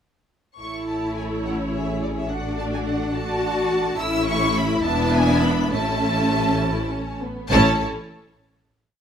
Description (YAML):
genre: quick classical-period movement for string orchestra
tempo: 69 BPM (dotted quarters)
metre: 6/8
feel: straight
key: A major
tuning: A4 = 441 Hz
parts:
  - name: warm symphonic violin section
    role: melody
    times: 0.6-7.8 s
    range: D5 to E6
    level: -26 LUFS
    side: right 1 dB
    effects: none
  - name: warm symphonic violin section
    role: second line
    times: 0.6-7.8 s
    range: B3 to E5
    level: -28 LUFS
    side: left 1 dB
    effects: none
  - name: warm symphonic viola section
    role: accompaniment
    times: 0.6-7.8 s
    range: A3 to E4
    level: -25 LUFS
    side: left 1 dB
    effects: none
  - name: warm symphonic cello section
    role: bass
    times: 0.6-7.8 s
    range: A2 to F#4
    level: -26 LUFS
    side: left 1 dB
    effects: none
  - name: warm symphonic double bass section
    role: bass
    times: 0.6-7.8 s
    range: E1 to A1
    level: -26 LUFS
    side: right 2 dB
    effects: none
room: wet stone room reverb, RT60 1.0 s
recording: none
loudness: -20 LUFS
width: side -8 dB against mid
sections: 0.6-7.5 A section; 7.5-9.0 final chord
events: none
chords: 0.6 A; 2.3 D/A; 4.0 A; 4.8 E5; 5.7 A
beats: | 0.59 1.45 | 2.30 3.15 | 3.99 4.84 | 5.72 6.61 | 7.50